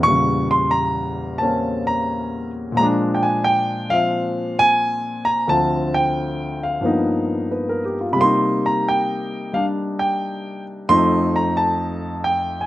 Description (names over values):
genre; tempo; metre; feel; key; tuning
solo jazz; 88 BPM; 4/4; swing 68% on 8ths; Bb mixolydian; A4 = 440 Hz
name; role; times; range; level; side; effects
warm concert grand piano; solo; 0.0-12.7 s; D2 to C#6; -18 LUFS; equal; slapback echo
room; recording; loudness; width
little or no reverb; recorded outdoors, with no room sound; -18 LUFS; side -15 dB against mid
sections
0.0-12.7 A section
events
none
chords
0.0 Edim7; 2.8 Bb7; 5.5 Dm7; 6.8 G7alt; 8.2 Cm7; 10.9 F7